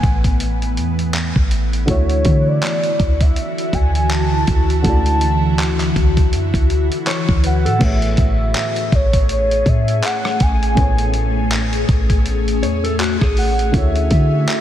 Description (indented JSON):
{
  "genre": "contemporary R&B",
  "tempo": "81 BPM",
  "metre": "4/4",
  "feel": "swing 58% on 16ths",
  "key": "A major",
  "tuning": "A4 = 440 Hz",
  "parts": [
    { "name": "warm velvety synth lead", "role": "melody", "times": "0.0-14.6 s", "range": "C#5 to A5", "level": "-22 LUFS", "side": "equal", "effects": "chorus, tape echo" },
    { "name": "dark baby grand piano", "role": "accompaniment", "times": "0.0-14.6 s", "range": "A2 to E5", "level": "-26 LUFS", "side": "right 1 dB", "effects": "lush chorus" },
    { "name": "ethereal airy pad", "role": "sustained chords", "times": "0.0-14.6 s", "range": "D3 to G#4", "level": "-22 LUFS", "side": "left 1 dB", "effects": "ensemble chorus, built-in reverb, phaser" },
    { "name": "clean 808-style bass", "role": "bass", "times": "0.0-14.5 s", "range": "A1 to D3", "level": "-18 LUFS", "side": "equal", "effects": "none" },
    { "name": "dusty soul sampler-style drum kit", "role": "drums", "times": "0.0-14.6 s", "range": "crash cymbal, handclaps, hi-hat, kick drum, rim click", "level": "-18 LUFS", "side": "equal", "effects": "none" },
    { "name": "mellow electric guitar", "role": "arpeggios", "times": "7.1-8.0, 12.6-13.7 s", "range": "F#4 to C#5", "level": "-26 LUFS", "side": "equal", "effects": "warbly pitch drift, tape echo" }
  ],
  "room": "light reverb",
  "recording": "none",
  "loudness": "-14 LUFS",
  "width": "side -11 dB against mid",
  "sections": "0.0-7.8 A section; 7.8-14.6 B section",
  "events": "none",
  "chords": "0.0 Amaj9; 1.9 Dadd9; 7.8 Amaj9; 13.7 Dmaj9"
}